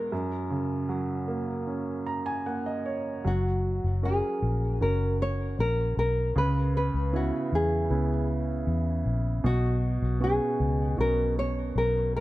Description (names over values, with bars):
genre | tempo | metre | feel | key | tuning
pop ballad | 78 BPM | 4/4 | straight | unclear | A4 = 439 Hz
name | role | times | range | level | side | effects
nylon-string guitar | melody | 0.0-12.2 s | F#4 to C#5 | -30 LUFS | equal | none
warm upright piano | accompaniment | 0.0-12.2 s | F#2 to A#5 | -30 LUFS | right 2 dB | none
vintage muted fingered electric bass | bass | 3.3-12.2 s | F#1 to E2 | -27 LUFS | left 1 dB | none
room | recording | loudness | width
studio reverb | none | -25 LUFS | side -17 dB against mid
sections
0.0-3.3 A section; 3.3-12.2 B section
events
upright piano fill 1.7-3.3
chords
0.1 F#; 6.4 C#m7; 9.4 Bsus2